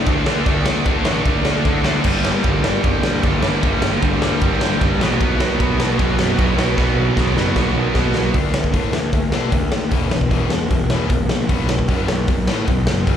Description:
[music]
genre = punk rock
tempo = 152 BPM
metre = 4/4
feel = straight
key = B minor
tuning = A4 = 440 Hz
[part]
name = biting overdriven guitar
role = riff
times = 0.0-8.3 s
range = G2 to D4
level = -22 LUFS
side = right 10 dB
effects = none
[part]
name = high-gain distorted guitar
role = riff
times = 0.0-8.2 s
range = G2 to D4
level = -25 LUFS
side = right 1 dB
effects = distortion
[part]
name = tight distorted guitar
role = riff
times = 0.0-13.2 s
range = E2 to D4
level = -25 LUFS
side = left 11 dB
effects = distortion, slapback echo
[part]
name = fuzz picked electric bass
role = bass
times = 0.1-13.2 s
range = E1 to D3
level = -22 LUFS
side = equal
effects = overdrive
[part]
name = raw garage drum kit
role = drums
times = 0.1-13.2 s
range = crash cymbal, hi-hat, kick drum, ride cymbal, snare drum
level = -19 LUFS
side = equal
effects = none
[sound]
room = studio reverb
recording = live gig heard through the venue's PA, club reverb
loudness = -15 LUFS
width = side -9 dB against mid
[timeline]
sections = 0.0-8.3 A section; 8.3-13.2 B section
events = drum fill 6.8-8.3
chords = 0.0 D5; 2.0 G5; 5.0 B5; 8.3 D5; 9.9 E5; 11.5 B5

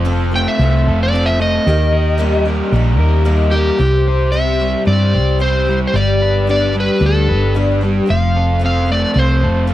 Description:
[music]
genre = rock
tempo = 112 BPM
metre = 4/4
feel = straight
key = unclear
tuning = A4 = 438 Hz
[part]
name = dark upright piano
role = accompaniment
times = 0.0-3.8 s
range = F4 to Eb5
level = -32 LUFS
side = right 4 dB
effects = none
[part]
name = picked twelve-string acoustic guitar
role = accompaniment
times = 0.0-9.7 s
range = G2 to A4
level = -22 LUFS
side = left 4 dB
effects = none
[part]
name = accordion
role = sustained chords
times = 0.0-3.8 s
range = C4 to Bb4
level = -29 LUFS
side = right 3 dB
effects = none
[part]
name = raw garage guitar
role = riff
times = 0.0-9.7 s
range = C3 to C5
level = -20 LUFS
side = equal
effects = overdrive
[part]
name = hollow-body short-scale fingered electric bass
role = bass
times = 0.0-9.7 s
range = F1 to G2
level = -15 LUFS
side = equal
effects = none
[part]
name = overdriven slide guitar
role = melody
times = 0.4-9.7 s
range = G4 to G5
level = -19 LUFS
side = right 1 dB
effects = none
[sound]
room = small room ambience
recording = dry, close 1970s-style studio recording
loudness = -12 LUFS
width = side -14 dB against mid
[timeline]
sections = 0.0-3.8 A section; 3.8-9.7 B section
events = electric slide guitar solo 0.0-3.8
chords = 0.0 F; 1.7 Eb; 3.8 C; 5.9 G; 8.1 F

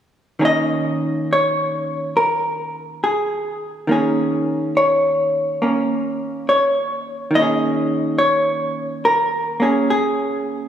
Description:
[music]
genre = jazz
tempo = 70 BPM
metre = 4/4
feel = swing 66% on 8ths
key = unclear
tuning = A4 = 441 Hz
[part]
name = vintage hollow-body jazz guitar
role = accompaniment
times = 0.4-10.7 s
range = D#3 to D#5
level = -17 LUFS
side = equal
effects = none
[sound]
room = wet scoring stage reverb, RT60 2.0 s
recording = recorded in a church or concert hall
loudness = -17 LUFS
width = side -9 dB against mid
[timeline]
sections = 0.4-10.7 A section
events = none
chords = 0.4 D#7sus4

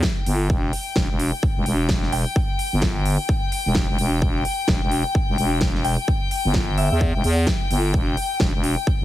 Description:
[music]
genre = bass house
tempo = 129 BPM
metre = 4/4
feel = swing 60% on 16ths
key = E minor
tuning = A4 = 439 Hz
[part]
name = big-room dance drum kit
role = drums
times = 0.0-8.7 s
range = hi-hat, snare drum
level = -27 LUFS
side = equal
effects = studio reverb
[part]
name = electronic kick drum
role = drums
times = 0.0-9.0 s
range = none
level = -22 LUFS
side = equal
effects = studio reverb
[part]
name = rich chamber string section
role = texture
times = 0.0-9.0 s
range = G5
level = -28 LUFS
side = left 5 dB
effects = sidechain pumping
[part]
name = growling FM bass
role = bass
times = 0.3-9.0 s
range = E1 to E2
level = -21 LUFS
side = equal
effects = overdrive, sidechain pumping
[part]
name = soft synth bell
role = melody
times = 2.1-2.8, 5.8-7.0 s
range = E5 to G5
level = -31 LUFS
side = equal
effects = chorus, phaser, tape echo
[sound]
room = little or no reverb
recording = heavily compressed radio sound, multiband compression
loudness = -19 LUFS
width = side -14 dB against mid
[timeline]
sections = 0.0-9.0 A section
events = none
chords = 0.0 Em

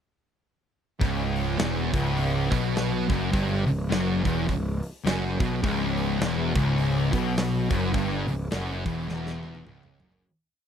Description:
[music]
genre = stoner and doom metal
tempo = 104 BPM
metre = 4/4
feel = swing 59% on 8ths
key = C# minor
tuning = A4 = 436 Hz
[part]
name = fuzz guitar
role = riff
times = 1.0-10.2 s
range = C#2 to B2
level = -31 LUFS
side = equal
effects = distortion
[part]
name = thick fuzz guitar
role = riff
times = 1.0-10.2 s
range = C#2 to B2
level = -30 LUFS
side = left 8 dB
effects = distortion
[part]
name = thick fuzz guitar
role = riff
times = 1.0-10.2 s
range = C#2 to B2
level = -30 LUFS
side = right 8 dB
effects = distortion
[part]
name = fuzz picked electric bass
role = bass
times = 1.0-10.2 s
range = C#1 to B1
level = -29 LUFS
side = equal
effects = overdrive, tube saturation
[part]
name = big rock drum kit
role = drums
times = 1.0-10.2 s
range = hi-hat, kick drum, snare drum, toms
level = -30 LUFS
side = equal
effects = none
[sound]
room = little or no reverb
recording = dry, close 1970s-style studio recording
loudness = -23 LUFS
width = side -8 dB against mid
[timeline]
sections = 1.0-10.2 riff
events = fade-out 7.9-10.2; drum fill 9.1-10.2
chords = 1.0 C#m

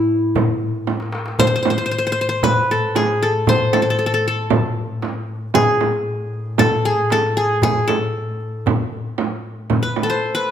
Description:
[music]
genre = Arabic maqam ensemble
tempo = 116 BPM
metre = 4/4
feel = straight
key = A maqam nahawand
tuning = A4 = 438 Hz
[part]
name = qanun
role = melody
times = 0.0-10.5 s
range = E4 to C5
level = -18 LUFS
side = left 2 dB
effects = none
[part]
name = clear double bass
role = drone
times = 0.0-9.8 s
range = A2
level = -27 LUFS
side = left 1 dB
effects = none
[part]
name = darbuka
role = percussion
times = 0.4-10.5 s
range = none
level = -24 LUFS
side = left 2 dB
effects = none
[part]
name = frame drum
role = percussion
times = 0.4-10.1 s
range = none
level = -22 LUFS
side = right 8 dB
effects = none
[sound]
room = moderate recital hall reverb, RT60 1.5 s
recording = none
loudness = -16 LUFS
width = side -9 dB against mid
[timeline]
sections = 0.0-9.7 A section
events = drum fill 0.9-1.4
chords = none

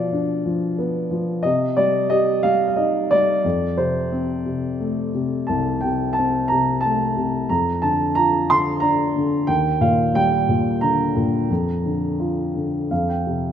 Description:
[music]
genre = classical, lyrical solo piano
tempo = 89 BPM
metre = 3/4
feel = rubato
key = unclear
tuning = A4 = 436 Hz
[part]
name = dark grand piano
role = solo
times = 0.0-13.5 s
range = C2 to C6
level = -18 LUFS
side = equal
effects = none
[sound]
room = light reverb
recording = none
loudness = -18 LUFS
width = side -9 dB against mid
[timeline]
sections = 0.0-13.5 A section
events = grand piano fill 12.5-13.5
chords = 0.0 Bdim; 1.4 Cm; 3.4 F; 7.5 F6; 9.5 Ebmaj7; 11.5 Bb/F; 12.9 Fsus2

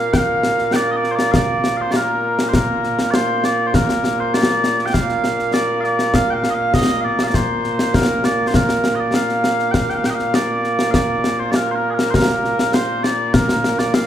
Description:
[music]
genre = scottish traditional, Scottish pipe music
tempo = 100 BPM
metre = 4/4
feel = straight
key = Bb major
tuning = A4 = 440 Hz
[part]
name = mellow small bagpipes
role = melody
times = 0.0-14.1 s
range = Bb2 to G5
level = -18 LUFS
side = right 1 dB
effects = none
[part]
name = concert snare drum and concert bass drum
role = drums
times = 0.1-14.1 s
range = none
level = -19 LUFS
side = left 1 dB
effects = none
[sound]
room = wet recital hall reverb, RT60 1.4 s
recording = heard from further back in the room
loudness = -15 LUFS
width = side -10 dB against mid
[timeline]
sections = 0.0-14.1 A section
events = none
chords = none

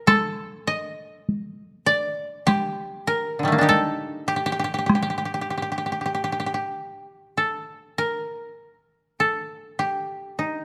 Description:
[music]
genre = japanese traditional, Japanese chamber music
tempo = 50 BPM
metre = 2/4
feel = rubato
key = G hirajoshi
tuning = A4 = 441 Hz
[part]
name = koto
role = melody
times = 0.0-10.6 s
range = D3 to Eb5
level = -25 LUFS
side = equal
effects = none
[part]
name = solo taiko drums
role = percussion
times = 0.1-5.2 s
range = none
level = -25 LUFS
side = equal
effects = none
[sound]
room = moderate recital hall reverb, RT60 1.6 s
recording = none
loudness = -25 LUFS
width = mono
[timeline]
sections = 0.0-7.4 A section; 7.4-10.6 B section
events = none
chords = none

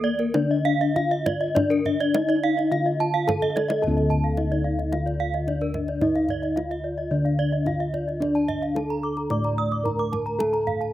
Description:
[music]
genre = Balinese gamelan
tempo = 109 BPM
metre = 4/4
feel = uneven beats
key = D pelog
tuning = A4 = 439 Hz
[part]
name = gamelan-type bronze metallophone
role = melody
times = 0.0-10.9 s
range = Bb3 to D5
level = -27 LUFS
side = left 2 dB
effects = slapback echo
[part]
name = gamelan-type bronze metallophone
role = arpeggios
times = 0.0-10.8 s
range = Bb4 to Eb6+35c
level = -28 LUFS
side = right 6 dB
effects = slapback echo
[part]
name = gamelan-type bronze metallophone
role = arpeggios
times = 0.2-10.9 s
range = Bb4 to D6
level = -29 LUFS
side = left 3 dB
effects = slapback echo
[part]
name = kendang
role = percussion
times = 0.2-10.9 s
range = none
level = -32 LUFS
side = right 1 dB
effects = none
[part]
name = gamelan-type bossed gongs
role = bass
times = 0.3-10.9 s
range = D2 to A4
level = -26 LUFS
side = equal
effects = none
[sound]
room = little or no reverb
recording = recorded outdoors, with no room sound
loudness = -21 LUFS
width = side -13 dB against mid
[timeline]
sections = 0.0-3.8 A section; 3.8-10.9 B section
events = drum fill 3.4-3.8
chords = none

